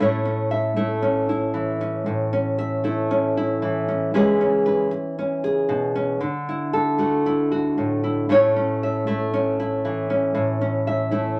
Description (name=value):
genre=highlife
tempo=116 BPM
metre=4/4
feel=straight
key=A major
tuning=A4 = 439 Hz
part: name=nylon-string guitar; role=solo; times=0.0-11.4 s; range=A2 to E5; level=-22 LUFS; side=equal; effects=none
room=wet club reverb, RT60 0.5 s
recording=none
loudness=-22 LUFS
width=mono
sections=0.0-11.4 A section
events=none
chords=0.0 A; 4.1 E6; 6.2 Dadd9; 8.3 A